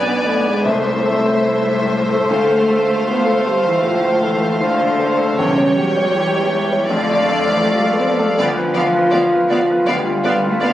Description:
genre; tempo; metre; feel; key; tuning
classical, romantic movement for piano and orchestra; 67-82 BPM; 4/4; rubato; unclear; A4 = 440 Hz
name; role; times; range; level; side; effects
rich symphonic violin section; melody; 0.0-10.7 s; E5 to G#5; -26 LUFS; left 2 dB; none
warm grand piano; melody; 0.0-10.7 s; B1 to D5; -19 LUFS; left 1 dB; none
rich studio violin section; second line; 0.0-10.7 s; C5 to D5; -22 LUFS; equal; none
warm studio viola section; accompaniment; 0.0-10.7 s; G3 to B3; -23 LUFS; equal; none
mellow French horn section; sustained chords; 0.0-10.7 s; G#3 to C5; -20 LUFS; left 1 dB; none
rich symphonic cello section; bass; 0.0-10.7 s; G#2 to C4; -24 LUFS; right 1 dB; none
rich symphonic double bass section; bass; 0.0-10.7 s; B1 to F2; -29 LUFS; right 2 dB; none
timpani; percussion; 5.4-6.5 s; E2; -32 LUFS; equal; none
room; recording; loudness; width
moderate concert hall reverb, RT60 2.1 s; recorded on a phone in the room, club reverb, compression; -14 LUFS; side -13 dB against mid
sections
0.0-10.7 A section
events
none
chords
0.0 G#dim/B; 0.7 Am/C; 2.3 Dm7; 5.4 C#dim/E; 6.9 Dm/F; 8.4 Bdim/D

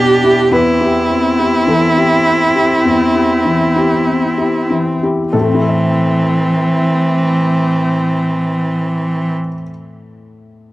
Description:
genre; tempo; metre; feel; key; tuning
neoclassical piano and strings; 46-54 BPM; 4/4; rubato; A minor; A4 = 440 Hz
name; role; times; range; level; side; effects
rich cello; second line; 0.0-9.3 s; E3 to G4; -14 LUFS; right 2 dB; none
felt-muted upright piano; accompaniment; 0.0-10.7 s; E2 to E5; -16 LUFS; left 2 dB; none
rich viola; accompaniment; 0.0-9.3 s; C4 to D4; -20 LUFS; equal; none
room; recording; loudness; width
light reverb, studio ambience; home recording on cassette; -11 LUFS; side -17 dB against mid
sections
0.0-5.3 A section; 5.3-10.2 B section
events
slowing down 0.0-5.3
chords
0.0 Em7; 0.5 C6/E; 5.3 Am

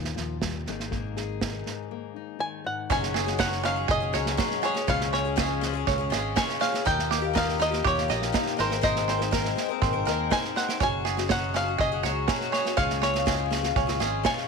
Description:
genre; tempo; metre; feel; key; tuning
indie folk with a building arrangement; 122 BPM; 4/4; straight; Db major; A4 = 440 Hz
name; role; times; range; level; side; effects
fingerpicked steel-string acoustic guitar; accompaniment; 0.0-4.6 s; Ab2 to Ab4; -37 LUFS; left 12 dB; none
fingered electric bass; bass; 0.0-14.2 s; Gb1 to Eb2; -32 LUFS; equal; none
unplugged drum kit; drums; 0.0-14.4 s; kick drum, snare drum; -30 LUFS; right 4 dB; none
bluegrass banjo; melody; 2.4-14.5 s; C5 to Ab5; -29 LUFS; left 1 dB; none
picked twelve-string acoustic guitar; accompaniment; 2.9-14.5 s; Db3 to Bb4; -31 LUFS; left 14 dB; none
hand-pumped harmonium; sustained chords; 2.9-14.5 s; Db3 to Ab4; -34 LUFS; left 14 dB; none
bluegrass banjo; arpeggios; 2.9-14.5 s; C4 to Eb5; -30 LUFS; right 13 dB; none
room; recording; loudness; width
light reverb, studio ambience; 1960s-style stereo with parts hard left and right; -24 LUFS; side -5 dB against mid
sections
0.0-2.9 A section; 2.9-14.5 B section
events
none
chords
0.0 Ebadd9; 0.7 Absus2; 2.9 Gbsus2; 4.9 Db; 6.9 Ebadd9; 8.6 Abadd9; 10.8 Gbsus2; 12.8 Db

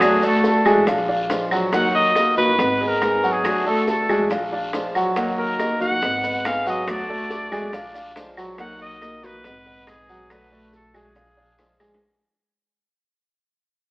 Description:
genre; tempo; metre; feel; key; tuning
latin, Cuban son and guajira; 140 BPM; 4/4; straight; Eb harmonic minor; A4 = 440 Hz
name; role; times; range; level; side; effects
warm trumpet; melody; 0.0-11.8 s; Ab4 to Gb5; -22 LUFS; equal; none
fingerpicked swing-style acoustic guitar; accompaniment; 0.0-12.0 s; D3 to Ab4; -25 LUFS; equal; none
warm concert grand piano; arpeggios; 0.0-12.0 s; Gb3 to Ab5; -22 LUFS; equal; none
upright bass; bass; 0.0-12.0 s; Ab1 to Eb2; -32 LUFS; equal; none
bongos; percussion; 0.0-12.0 s; none; -29 LUFS; equal; none
claves; percussion; 0.0-12.0 s; none; -32 LUFS; equal; none
guiro; percussion; 0.0-12.0 s; none; -39 LUFS; left 1 dB; none
maracas; percussion; 0.0-12.0 s; none; -45 LUFS; right 1 dB; none
room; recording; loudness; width
wet stone room reverb, RT60 1.3 s; band playing live in one room, AM radio sound, faint mains hum; -18 LUFS; side -22 dB against mid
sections
0.0-12.0 A section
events
fade-out 0.0-12.0; drum fill 11.8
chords
0.0 D; 0.9 Bb7; 1.7 Ebm; 2.6 Abm; 3.4 D; 4.3 Bb7; 5.2 Ebm; 6.0 Abm; 6.9 D; 7.7 Bb7; 8.6 Ebm; 9.4 Abm; 10.3 D; 11.2 Bb7

